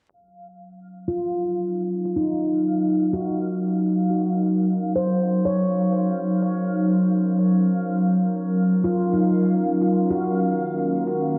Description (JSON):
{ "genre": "ambient", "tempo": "free time", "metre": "none", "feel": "none", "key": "Eb minor", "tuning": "A4 = 440 Hz", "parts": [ { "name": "warbly tape-like pad", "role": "sustained chords", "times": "1.4-11.4 s", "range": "Eb3 to Bb4", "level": "-24 LUFS", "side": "equal", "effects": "chorus, built-in reverb" }, { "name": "backwards swelling texture", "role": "texture", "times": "0.4-11.4 s", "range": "F5", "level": "-38 LUFS", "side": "equal", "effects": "built-in reverb" }, { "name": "handpan", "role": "arpeggios", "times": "1.1-11.0 s", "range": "Eb4 to Db5", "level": "-28 LUFS", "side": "equal", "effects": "low-pass filter, tape echo" } ], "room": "wet echo chamber reverb, RT60 2.1 s", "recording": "vinyl crackle, low-pass filter", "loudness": "-22 LUFS", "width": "mono", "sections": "0.1-11.4 A section", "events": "filter sweep on ambient pad 0.1-11.4; filter sweep on handpan 0.1-11.4; filter sweep 0.1-11.4", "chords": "0.1 Ebm9; 10.4 Bbm7/Eb" }